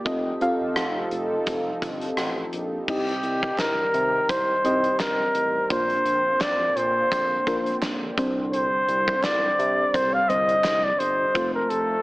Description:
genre	1980s-style pop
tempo	85 BPM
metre	4/4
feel	swing 55% on 16ths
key	unclear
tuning	A4 = 440 Hz
part	mellow FM electric piano	accompaniment	0.0-12.0 s	Bb2 to F5	-29 LUFS	equal	chorus, phaser
part	chorused pulse-width pad	sustained chords	0.0-12.0 s	D3 to A4	-33 LUFS	equal	none
part	smooth synth bass	bass	0.1-12.0 s	F1 to C3	-34 LUFS	equal	none
part	gated 80s drum kit	drums	0.1-11.9 s	crash cymbal, hi-hat, kick drum, rim click, snare drum	-30 LUFS	equal	gated reverb
part	breathy flugelhorn	melody	2.9-12.0 s	G4 to F5	-22 LUFS	equal	none
part	group handclap	percussion	3.6-10.8 s	none	-38 LUFS	right 2 dB	none
room	moderate plate reverb, RT60 2.1 s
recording	AM radio sound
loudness	-21 LUFS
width	side -21 dB against mid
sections	0.0-2.9 A section; 2.9-12.0 B section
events	none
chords	0.1 F7; 2.9 Cm; 5.7 Bbadd9; 8.2 Csus2; 11.4 F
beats	| 0.06 0.76 1.47 2.17 | 2.88 3.59 4.29 5.00 | 5.70 6.41 7.12 7.82 | 8.53 9.23 9.94 10.64 | 11.35

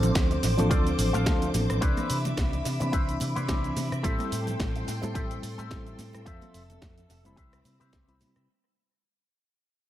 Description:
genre	nu-disco, nu disco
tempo	108 BPM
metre	4/4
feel	swing 56% on 16ths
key	unclear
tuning	A4 = 442 Hz
part	reed electric piano	accompaniment	0.0-8.5 s	E3 to B5	-31 LUFS	equal	fast tremolo, sidechain pumping, analog delay
part	string machine, full ensemble	sustained chords	0.0-8.5 s	C4 to E6	-36 LUFS	left 1 dB	ensemble chorus, sidechain pumping
part	picked electric bass with an envelope filter	bass	0.0-8.5 s	F1 to C3	-30 LUFS	equal	tube saturation
part	house drum kit	drums	0.0-8.5 s	cabasa, hi-hat, rim click, snare drum	-35 LUFS	right 1 dB	analog delay
part	congas	percussion	0.0-8.3 s	none	-38 LUFS	right 1 dB	none
part	electronic kick drum	drums	0.2-8.1 s	none	-28 LUFS	equal	none
part	electric guitar with an envelope filter	riff	0.3-8.2 s	E4 to F5	-37 LUFS	left 2 dB	analog chorus, analog delay
room	light reverb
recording	echo-heavy mix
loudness	-25 LUFS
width	side -13 dB against mid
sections	0.0-8.5 A section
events	drop 0.0-8.5; fade-out 0.0-8.5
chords	0.0 Dm7; 1.8 Cmaj9; 4.0 Am7; 6.3 Fmaj7; 7.4 Cmaj7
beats	0.15 0.71 1.26 | 1.82 2.38 2.93 3.49 | 4.04 4.60 5.15 5.71 | 6.26 6.82 7.38 7.93

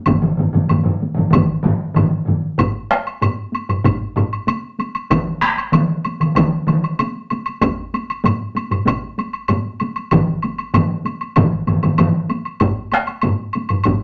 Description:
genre	japanese traditional, taiko drum ensemble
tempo	96 BPM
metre	4/4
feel	straight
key	none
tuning	none
part	taiko ensemble	percussion	0.1-14.0 s	none	-26 LUFS	equal	none
part	taiko ensemble	percussion	0.1-4.3, 8.2-14.0 s	none	-22 LUFS	equal	none
part	taiko ensemble	percussion	0.1-12.1 s	none	-19 LUFS	equal	none
part	taiko ensemble	percussion	0.1-14.0 s	none	-24 LUFS	equal	none
part	woodblock	percussion	0.1-14.0 s	none	-26 LUFS	equal	none
room	wet studio reverb, RT60 0.5 s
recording	nothing above 8.0 kHz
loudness	-18 LUFS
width	mono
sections	0.0-2.6 A section; 2.6-14.0 B section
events	none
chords	none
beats	| 0.07 0.70 1.33 1.96 | 2.59 3.22 3.85 4.48 | 5.11 5.74 6.37 6.99 | 7.62 8.25 8.87 9.50 | 10.12 10.75 11.37 12.00 | 12.62 13.24 13.87

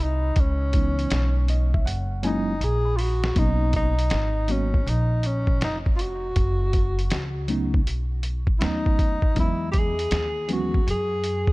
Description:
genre	hip hop, jazz-hop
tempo	80 BPM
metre	4/4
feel	swing 64% on 16ths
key	B major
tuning	A4 = 441 Hz
part	breathy tenor saxophone	melody	0.0-11.5 s	C#4 to G#4	-28 LUFS	equal	tape echo
part	upright bass	bass	0.0-11.5 s	E#1 to F#2	-25 LUFS	equal	none
part	lo-fi sampler-style drum kit	drums	0.4-11.5 s	hi-hat, kick drum, snare drum	-23 LUFS	equal	none
part	tine electric piano	accompaniment	0.7-10.8 s	E3 to B5	-28 LUFS	equal	medium stereo tremolo
room	small room reverb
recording	dark, warm production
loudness	-21 LUFS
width	side -21 dB against mid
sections	0.0-3.4 A section; 3.4-11.5 A section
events	tine electric piano fill 1.1-3.4; drum fill 1.9-3.4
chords	0.4 C#m7; 1.9 F#7; 3.4 Bmaj7; 6.4 F#m; 7.9 B7; 9.4 Emaj7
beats	| 0.36 1.11 1.86 2.61 | 3.36 4.11 4.86 5.61 | 6.36 7.11 7.86 8.61 | 9.36 10.11 10.86

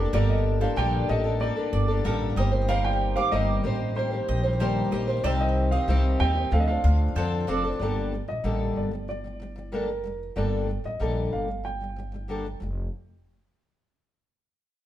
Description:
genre	acoustic pop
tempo	94 BPM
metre	4/4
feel	straight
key	G minor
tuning	A4 = 443 Hz
part	fingerpicked twelve-string acoustic guitar	accompaniment	0.0-12.9 s	G2 to C5	-28 LUFS	left 2 dB	none
part	pedal harmonium	sustained chords	0.0-7.8 s	D3 to A5	-37 LUFS	equal	none
part	upright bass	bass	0.0-12.9 s	F1 to F2	-26 LUFS	equal	none
part	dark upright piano	melody	0.1-12.6 s	Bb4 to G5	-31 LUFS	right 1 dB	digital delay
part	mandolin	arpeggios	0.1-7.6 s	Bb4 to D6	-35 LUFS	right 5 dB	digital delay
room	moderate large studio reverb, RT60 1.0 s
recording	band playing live in one room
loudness	-23 LUFS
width	side -12 dB against mid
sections	0.0-7.8 A section; 7.8-12.9 B section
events	none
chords	0.0 Gmadd9; 2.4 Eb6/G; 5.2 Cm; 6.5 Dm7; 7.8 Gmadd9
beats	| 0.13 0.77 1.41 2.05 | 2.69 3.33 3.97 4.61 | 5.25 5.88 6.52 7.16 | 7.80 8.44 9.08 9.72 | 10.36 11.00 11.64 12.29

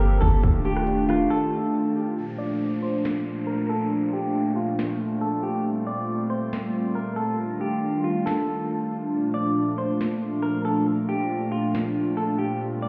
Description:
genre	hip hop, atmospheric cloud-rap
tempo	138 BPM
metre	4/4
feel	half-time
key	Bb major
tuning	A4 = 440 Hz
part	semi-hollow electric guitar	melody	0.0-12.9 s	F4 to D5	-32 LUFS	equal	low-pass filter, delay
part	hollow soft pad	sustained chords	0.0-12.9 s	Bb2 to A4	-27 LUFS	equal	chorus, sidechain pumping, low-pass filter
part	warbly lo-fi synth keys	arpeggios	0.0-2.2 s	Eb3 to G4	-33 LUFS	equal	chorus, delay
part	soft 808-style bass	bass	0.0-1.3 s	Eb1 to G1	-25 LUFS	equal	none
part	trap drum kit	drums	0.0-11.8 s	hi-hat, kick drum, rim click, snare drum	-28 LUFS	equal	none
part	downlifter	sound effects	2.2-5.7 s	none	-50 LUFS	equal	none
room	light reverb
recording	heard muffled through a wall, stone room reverb, EQ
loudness	-25 LUFS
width	mono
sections	0.0-2.2 A section; 2.2-12.9 B section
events	break 1.3-2.2; filter sweep 2.2-12.9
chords	0.4 Ebmaj9#11; 2.2 Bbmaj7; 5.7 Gm11; 7.4 Ebmaj9#11; 9.1 Bbmaj7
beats	0.00 | 0.43 0.87 1.30 1.74 | 2.17 2.61 3.04 3.48 | 3.91 4.35 4.78 5.22 | 5.65 6.09 6.52 6.96 | 7.39 7.83 8.26 8.70 | 9.13 9.56 10.00 10.43 | 10.87 11.30 11.74 12.17 | 12.61

